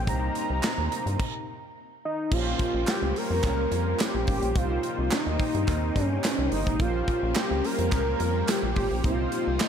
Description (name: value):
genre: early-eighties boogie funk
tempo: 107 BPM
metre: 4/4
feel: straight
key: Bb dorian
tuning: A4 = 440 Hz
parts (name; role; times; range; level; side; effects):
- fat analog lead; melody; 0.0-9.7 s; Eb4 to Bb5; -29 LUFS; equal; chorus, analog delay
- mellow synth brass; accompaniment; 0.0-9.7 s; Bb3 to C5; -33 LUFS; equal; chorus
- phased string machine; sustained chords; 0.0-9.7 s; C3 to Eb4; -35 LUFS; equal; ensemble chorus, phaser
- rubbery square bass; bass; 0.0-9.6 s; G1 to G2; -28 LUFS; equal; none
- modern studio drum kit; drums; 0.1-9.7 s; crash cymbal, handclaps, hi-hat, kick drum, snare drum; -29 LUFS; equal; none
- group handclap; percussion; 0.6-9.7 s; none; -37 LUFS; right 5 dB; none
room: moderate lush hall reverb, RT60 1.9 s, studio reverb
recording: dreamy mix soaked in reverb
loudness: -24 LUFS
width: side -8 dB against mid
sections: 0.0-2.3 A section; 2.3-9.7 B section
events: stop 1.2-2.3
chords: 0.1 Cm7; 2.3 Bbm69; 4.6 Cm7; 6.8 Bbm69; 9.0 Cm7